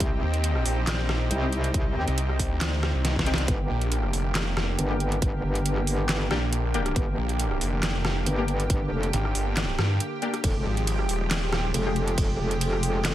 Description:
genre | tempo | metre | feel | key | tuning
heavy wobble dubstep | 138 BPM | 4/4 | swing 53% on 16ths, half-time | G phrygian | A4 = 442 Hz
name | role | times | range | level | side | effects
lush unison pad | sustained chords | 0.0-13.1 s | D3 to G4 | -31 LUFS | right 1 dB | chorus, sidechain pumping
metallic wobble bass | bass | 0.0-13.1 s | F1 to Eb2 | -26 LUFS | equal | chorus, overdrive
dubstep drum kit | drums | 0.0-13.1 s | handclaps, hi-hat, ride cymbal, rim click, snare drum | -29 LUFS | right 1 dB | none
electronic kick drum | drums | 0.0-12.3 s | none | -27 LUFS | equal | none
snarling distorted saw bass | bass | 0.2-11.7 s | Eb1 to G2 | -26 LUFS | equal | distortion, overdrive
orchestra-hit-like synth stab | stabs | 1.4-12.0 s | Ab3 to G4 | -33 LUFS | left 4 dB | built-in reverb, dub echo
room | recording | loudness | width
little or no reverb | none | -23 LUFS | side -13 dB against mid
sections
0.0-13.1 A section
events
drum fill 3.0-3.5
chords
0.0 Cm; 3.5 Gm; 10.4 Fmadd9

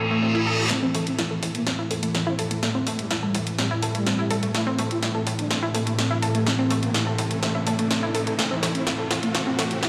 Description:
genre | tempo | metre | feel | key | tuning
melodic techno | 125 BPM | 4/4 | straight | A minor | A4 = 444 Hz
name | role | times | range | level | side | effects
analog synth brass | melody | 0.0-9.9 s | E3 to E4 | -31 LUFS | equal | chorus, vintage 12-bit sampler grit, dub echo
dark analog pad | sustained chords | 0.0-9.9 s | E3 to G4 | -34 LUFS | equal | subtle chorus
analog pluck | arpeggios | 0.0-9.9 s | A3 to A4 | -30 LUFS | equal | chorus, dub echo
bowed-like drone | drone | 0.1-9.9 s | A2 to E3 | -34 LUFS | equal | built-in reverb
reverse cymbal and riser | sound effects | 0.0-9.9 s | none | -34 LUFS | equal | none
house drum kit | drums | 0.7-9.9 s | hi-hat, snare drum | -30 LUFS | equal | high-pass filter on snare, studio ambience, high-pass filter on hats
tight sequencer bass | bass | 0.9-9.8 s | A1 to A2 | -39 LUFS | equal | none
room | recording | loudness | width
moderate huge ambient reverb, RT60 7.9 s | played on a big sound system in a bare room, large studio reverb | -24 LUFS | mono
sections
0.7-9.9 A section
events
reverse cymbal 0.0-0.7; build-up 0.7-9.9; drum fill 0.7-9.9; filter sweep on analog synth pad 0.7-9.9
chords
0.0 Am

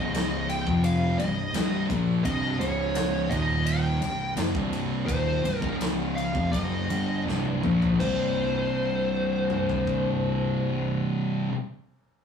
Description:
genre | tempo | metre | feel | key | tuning
stoner and doom metal | 80-86 BPM | 4/4 | straight | C minor | A4 = 438 Hz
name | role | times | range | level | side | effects
fuzz lead guitar | melody | 0.0-11.0 s | C5 to G5 | -30 LUFS | left 2 dB | wah, distortion
thick fuzz guitar | riff | 0.0-11.5 s | C2 to Bb3 | -28 LUFS | left 3 dB | distortion
thick fuzz guitar | riff | 0.0-11.5 s | C2 to Bb3 | -29 LUFS | right 4 dB | distortion
growling fingered electric bass | bass | 0.0-11.0 s | C1 to Bb1 | -33 LUFS | left 1 dB | overdrive
big rock drum kit | drums | 0.1-10.0 s | crash cymbal, kick drum, ride cymbal, snare drum, toms | -33 LUFS | left 1 dB | none
room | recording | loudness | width
moderate studio reverb, RT60 0.6 s | rough rehearsal-room recording, tube saturation, studio reverb | -24 LUFS | side -7 dB against mid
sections
0.0-8.0 A section; 8.0-11.0 B section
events
slowing down 2.2-8.0; drum fill 7.3-8.0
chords
0.0 Db5; 0.7 Cm; 2.6 Db5; 3.3 Eb5; 4.0 Cm; 5.6 Db5; 6.3 Cm; 8.0 C5

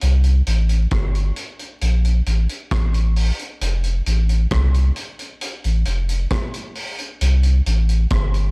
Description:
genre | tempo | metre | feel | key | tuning
roots reggae | 67 BPM | 4/4 | straight | F major | A4 = 440 Hz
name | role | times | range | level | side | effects
warm sub bass | bass | 0.0-8.5 s | F1 to C2 | -16 LUFS | equal | none
vintage drum kit | drums | 0.0-8.5 s | hi-hat, kick drum, rim click | -26 LUFS | equal | none
room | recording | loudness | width
little or no reverb | dark, warm production, vinyl crackle, faint mains hum | -17 LUFS | side -35 dB against mid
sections
0.0-8.5 A section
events
none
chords
none

